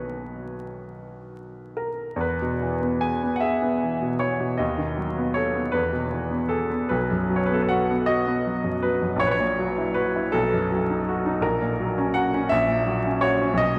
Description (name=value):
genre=classical, romantic nocturne for solo piano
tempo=40-57 BPM (dotted quarters)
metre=6/8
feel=rubato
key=E major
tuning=A4 = 438 Hz
part: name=clear grand piano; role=solo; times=0.0-13.8 s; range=A#1 to G#5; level=-24 LUFS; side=equal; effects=none
room=wet cathedral reverb, RT60 5.3 s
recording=in a vast, echoing space, vinyl crackle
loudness=-24 LUFS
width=mono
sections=0.0-2.2 A section; 2.2-13.8 B section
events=none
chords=0.0 B; 2.2 E; 4.6 B7/D#; 5.7 E; 6.9 B; 9.2 F#7/A#; 10.3 B; 11.4 F#/A#